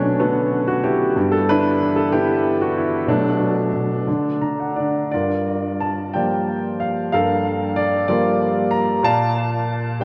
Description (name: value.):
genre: classical, lyrical solo piano.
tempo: 62 BPM (dotted quarters).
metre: 6/8.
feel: rubato.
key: B minor, G minor from 5.1 s.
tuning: A4 = 439 Hz.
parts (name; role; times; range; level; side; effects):
clear baby grand piano; solo; 0.0-10.0 s; G2 to A#5; -20 LUFS; equal; analog delay.
room: wet lush hall reverb, RT60 2.8 s.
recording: dreamy mix soaked in reverb, cassette tape.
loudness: -20 LUFS.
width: mono.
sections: 0.0-5.1 A section; 5.1-10.0 B section.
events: grand piano fill 4.1-5.1.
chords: 0.0 Bm7; 1.2 G6; 3.1 Bm7; 4.1 D; 5.1 Gm9; 9.0 Bb.